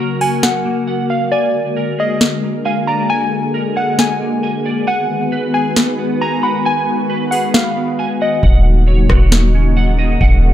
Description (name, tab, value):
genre	hip hop, atmospheric cloud-rap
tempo	135 BPM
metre	4/4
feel	half-time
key	Eb minor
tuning	A4 = 440 Hz
part	warbly dusty pluck	melody	0.0-8.4 s	D5 to Cb6	-19 LUFS	equal	chorus, low-pass filter, tape echo
part	sweeping resonant pad	sustained chords	0.0-10.5 s	Db3 to Cb5	-19 LUFS	left 2 dB	lush chorus, sidechain pumping
part	clean electric guitar	arpeggios	0.0-10.5 s	Bb3 to Ab5	-24 LUFS	right 6 dB	ensemble chorus, low-pass filter, tape echo
part	booming analog drum machine	drums	0.2-10.4 s	hi-hat, kick drum, rim click, snare drum	-13 LUFS	equal	overdrive
part	soft 808-style bass	bass	8.4-10.5 s	Eb1	-12 LUFS	equal	none
room	light reverb, digital ambience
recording	none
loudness	-13 LUFS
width	side -12 dB against mid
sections	0.0-8.4 A section; 8.4-10.5 B section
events	silent gap 8.0-8.4; hi-hats muted 8.4-10.5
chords	0.0 Gbmaj7; 1.3 Bb7; 4.9 Abm7; 8.4 Ebm7